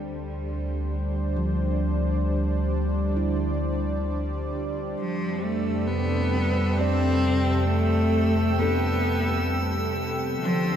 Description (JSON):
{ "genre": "ambient", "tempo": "66 BPM", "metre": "3/4", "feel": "straight", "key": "F lydian", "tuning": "A4 = 440 Hz", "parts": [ { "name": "warm analog pad", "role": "sustained chords", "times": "0.0-10.8 s", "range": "C3 to G5", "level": "-30 LUFS", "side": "equal", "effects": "chorus, tremolo" }, { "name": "handpan", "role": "arpeggios", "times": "0.0-10.8 s", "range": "F3 to D5", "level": "-35 LUFS", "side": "left 2 dB", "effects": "ping-pong delay" }, { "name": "warm sub bass", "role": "bass", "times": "0.0-10.8 s", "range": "D2 to F2", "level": "-26 LUFS", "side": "equal", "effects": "none" }, { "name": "bowed-like drone", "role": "drone", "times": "0.0-10.8 s", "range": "G3", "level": "-31 LUFS", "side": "right 1 dB", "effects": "built-in reverb" }, { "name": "clear cello", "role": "melody", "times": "5.0-10.8 s", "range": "F3 to C4", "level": "-27 LUFS", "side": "left 1 dB", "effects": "ping-pong delay" }, { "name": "drifting glass-harmonics texture", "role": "texture", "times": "5.6-10.8 s", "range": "E6", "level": "-35 LUFS", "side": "right 3 dB", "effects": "chorus, built-in reverb" } ], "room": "wet cathedral reverb, RT60 5.9 s", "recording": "in a vast, echoing space", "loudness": "-22 LUFS", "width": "side -9 dB against mid", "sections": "0.0-10.8 A section", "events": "fade-in on analog synth pad 0.0-10.8; fade-out on handpan 0.0-10.8", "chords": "0.0 Dm7", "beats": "0.47 1.37 | 2.26 3.17 4.08 | 5.00 5.91 6.81 | 7.72 8.62 9.52 | 10.41" }